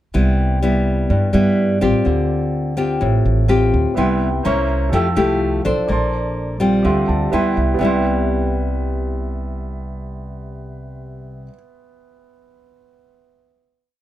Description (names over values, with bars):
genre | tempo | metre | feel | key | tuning
bossa nova | 125 BPM | 4/4 | straight | C major | A4 = 441 Hz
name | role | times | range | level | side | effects
nylon-string guitar | accompaniment | 0.1-11.6 s | G2 to C5 | -18 LUFS | left 1 dB | none
upright bass | bass | 0.1-11.5 s | A1 to G2 | -21 LUFS | right 1 dB | none
clear baby grand piano | accompaniment | 3.9-14.0 s | B3 to E6 | -25 LUFS | right 5 dB | none
room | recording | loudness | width
light reverb | none | -15 LUFS | side -13 dB against mid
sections
0.1-7.8 A section; 7.8-11.7 final chord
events
grand piano fill 6.8-7.8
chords
0.1 Cmaj7; 2.1 Dm7; 4.0 Cmaj7; 4.4 C7b9; 4.9 Fmaj9; 5.9 Bbmaj9; 6.8 Dm11; 7.3 Cmaj7